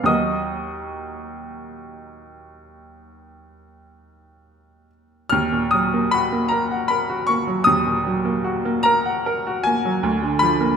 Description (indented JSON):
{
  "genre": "classical, romantic nocturne for solo piano",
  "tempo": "44-53 BPM (dotted quarters)",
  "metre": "12/8",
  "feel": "rubato",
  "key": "Eb minor",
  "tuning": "A4 = 441 Hz",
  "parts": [
    { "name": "bright baby grand piano", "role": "solo", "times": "0.0-10.8 s", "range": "D2 to F6", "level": "-18 LUFS", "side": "equal", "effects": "none" }
  ],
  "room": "wet recital hall reverb, RT60 1.5 s",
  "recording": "minimal, uncompressed stereo recording",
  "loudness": "-18 LUFS",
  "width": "side -7 dB against mid",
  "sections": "0.0-5.3 A section; 5.3-10.8 A section",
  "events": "none",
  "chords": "0.1 Ebm; 10.0 Bb7/D"
}